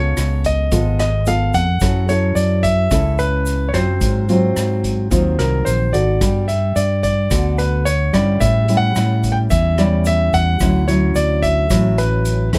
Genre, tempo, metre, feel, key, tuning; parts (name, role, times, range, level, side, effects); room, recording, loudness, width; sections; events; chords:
bossa nova; 109 BPM; 4/4; straight; D major; A4 = 440 Hz
warm concert grand piano; melody; 0.0-12.5 s; A#4 to G5; -23 LUFS; equal
nylon-string guitar; accompaniment; 0.0-12.6 s; G#2 to A4; -23 LUFS; equal
fingered electric bass; bass; 0.0-12.6 s; G#1 to A2; -20 LUFS; equal
vintage drum kit; drums; 0.2-12.6 s; hi-hat, kick drum, rim click; -26 LUFS; equal
tube shaker; percussion; 0.2-12.6 s; -38 LUFS; equal
little or no reverb; -17 LUFS; mono
0.0-12.6 A section
0.0 C#7b13; 1.8 F#m7; 4.0 G#13; 6.2 Gmaj9; 8.4 A7; 10.6 Dmaj9